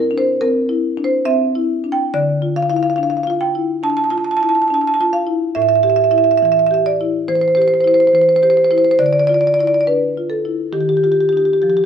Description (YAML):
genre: classical, contemporary piece for solo marimba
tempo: 69 BPM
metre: 4/4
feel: rubato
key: unclear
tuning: A4 = 438 Hz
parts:
  - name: marimba with soft mallets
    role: solo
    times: 0.0-11.9 s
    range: A2 to A5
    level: -13 LUFS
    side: equal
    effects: none
room: light reverb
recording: none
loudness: -13 LUFS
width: side -8 dB against mid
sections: 0.0-11.9 A section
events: none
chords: 0.0 Cadd9; 2.1 Dmadd9; 5.5 Am7; 9.0 Dmadd9; 10.8 Ebadd9